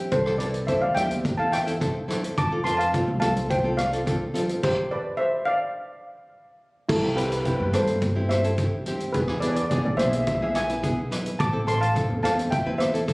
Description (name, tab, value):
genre	calypso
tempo	106 BPM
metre	4/4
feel	straight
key	C major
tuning	A4 = 440 Hz
part	nylon-string guitar	accompaniment	0.0-13.1 s	B3 to B4	-29 LUFS	equal	none
part	steel pan	melody	0.1-13.1 s	E4 to D6	-25 LUFS	equal	none
part	upright bass	bass	0.1-13.1 s	A1 to G2	-28 LUFS	equal	none
part	street-band drum kit	drums	0.1-13.1 s	crash cymbal, hi-hat, kick drum, rim click	-30 LUFS	equal	none
part	congas	percussion	1.0-12.8 s	none	-34 LUFS	equal	none
room	light reverb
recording	recorded on a phone in the room, club reverb, compression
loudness	-22 LUFS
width	side -26 dB against mid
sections	0.0-6.9 A section; 6.9-13.1 A section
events	stop 4.6-6.9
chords	0.1 Am7/C; 2.4 F; 4.6 Gsus4 (rootless); 5.8 N.C.; 6.9 C6; 9.1 E; 11.4 Am